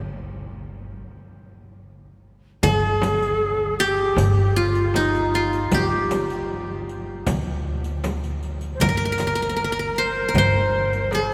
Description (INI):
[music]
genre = Arabic maqam ensemble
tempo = 78 BPM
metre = 4/4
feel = straight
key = G maqam bayati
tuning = A4 = 440 Hz
[part]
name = qanun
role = melody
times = 0.0-11.3 s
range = Eb4 to C5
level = -26 LUFS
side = equal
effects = none
[part]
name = upright bass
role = bass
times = 0.0-11.3 s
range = G1 to D2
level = -28 LUFS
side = equal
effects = none
[part]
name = darbuka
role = percussion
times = 0.1-11.3 s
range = none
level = -35 LUFS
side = equal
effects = none
[part]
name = breathy bright low ney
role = second line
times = 2.6-11.3 s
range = Eb4 to C5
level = -28 LUFS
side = equal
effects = none
[part]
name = frame drum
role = percussion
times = 2.6-11.3 s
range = none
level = -31 LUFS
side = equal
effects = none
[part]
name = riq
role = percussion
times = 2.6-11.3 s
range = none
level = -39 LUFS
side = equal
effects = none
[sound]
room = wet cathedral reverb, RT60 5.8 s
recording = recorded in a church or concert hall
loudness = -22 LUFS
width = mono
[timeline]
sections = 0.0-2.6 A section; 2.6-11.3 B section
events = break 1.1-2.6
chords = none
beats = 0.31 1.09 1.86 | 2.63 3.40 4.17 4.95 | 5.72 6.49 7.26 8.03 | 8.80 9.57 10.34 11.11